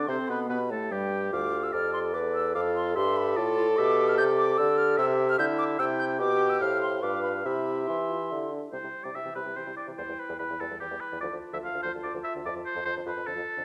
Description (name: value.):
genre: quick classical-period movement for wind quintet.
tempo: 146 BPM.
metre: 3/4.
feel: straight.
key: C major.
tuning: A4 = 440 Hz.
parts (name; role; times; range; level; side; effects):
mellow silver concert flute; melody; 0.0-13.6 s; G5 to G6; -34 LUFS; equal; none.
warm oboe; second line; 0.0-13.6 s; G4 to G5; -36 LUFS; equal; none.
warm clarinet; accompaniment; 0.0-13.6 s; G3 to C5; -35 LUFS; equal; none.
mellow bassoon; bass; 0.0-13.6 s; D2 to E3; -34 LUFS; equal; none.
warm French horn; accompaniment; 0.1-13.6 s; D3 to A4; -34 LUFS; equal; none.
room: wet recital hall reverb, RT60 1.4 s.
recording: none.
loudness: -28 LUFS.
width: mono.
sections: 0.0-8.7 A section; 8.7-13.6 A section.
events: none.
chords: 0.1 C5; 1.3 Dm; 2.6 Dm/F; 3.8 G/B; 5.0 C; 6.2 G/B; 6.6 F/A; 7.0 G7; 7.5 C; 10.0 Em; 11.2 Dm; 12.4 Dm/F (rootless).